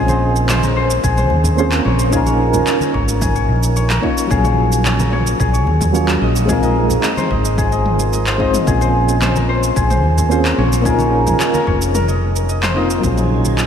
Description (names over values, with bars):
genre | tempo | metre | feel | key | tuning
sunset chillout | 110 BPM | 4/4 | straight | Bb minor | A4 = 444 Hz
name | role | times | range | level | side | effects
soft electric-piano-like synth keys | accompaniment | 0.0-13.7 s | Gb3 to Db5 | -18 LUFS | moving between left 2 dB and right 5 dB | chorus, tremolo, auto-pan, low-pass filter, diffuse ambient delay
concert harp | arpeggios | 0.0-13.7 s | Ab4 to Eb5 | -20 LUFS | left 3 dB | diffuse ambient delay
woody fretless electric bass | bass | 0.0-13.7 s | F1 to Eb2 | -17 LUFS | equal | none
deep house drum kit | drums | 0.1-13.7 s | handclaps, shaker, toms | -22 LUFS | right 1 dB | overdrive
congas | percussion | 0.1-13.7 s | none | -29 LUFS | left 2 dB | none
electronic kick drum | drums | 1.0-13.1 s | none | -22 LUFS | equal | overdrive
shimmering ambient pad | sustained chords | 13.5-13.7 s | none | barely audible | none | none
wind-like tuned noise texture | texture | 13.2-13.7 s | Ab4 to Ab5 | -30 LUFS | equal | built-in reverb
room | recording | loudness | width
moderate cathedral reverb, RT60 4.7 s | dreamy mix soaked in reverb, lossy compression artefacts | -13 LUFS | side -8 dB against mid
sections
0.0-13.0 A section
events
break 11.9-13.0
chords
0.0 Bbm9; 1.9 Db69; 4.3 Gbmaj9/Bb; 6.2 Fm7; 8.7 Bbm9; 10.6 Db69/Bb; 11.9 F7sus4; 13.0 Gbmaj9/Bb